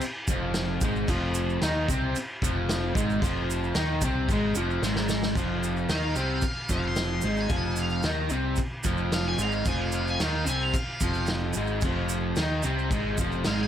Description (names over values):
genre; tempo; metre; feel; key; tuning
garage rock duo or trio; 112 BPM; 4/4; straight; unclear; A4 = 440 Hz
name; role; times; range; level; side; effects
raw garage guitar; riff; 0.0-13.7 s; F2 to Eb4; -28 LUFS; equal; overdrive
growling picked electric bass; bass; 0.0-13.7 s; F1 to Eb2; -30 LUFS; equal; overdrive
vintage drum kit; drums; 0.0-13.6 s; crash cymbal, kick drum, snare drum; -30 LUFS; equal; none
tube shaker; percussion; 0.0-13.6 s; none; -38 LUFS; right 7 dB; none
octave-fuzz lead guitar; melody; 5.9-13.7 s; F5 to C6; -32 LUFS; equal; distortion, digital delay
room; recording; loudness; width
small room ambience; none; -24 LUFS; side -10 dB against mid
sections
0.0-5.4 A section; 5.4-13.7 B section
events
drum fill 4.8-5.4; lead electric guitar solo 5.4-13.7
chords
0.0 F5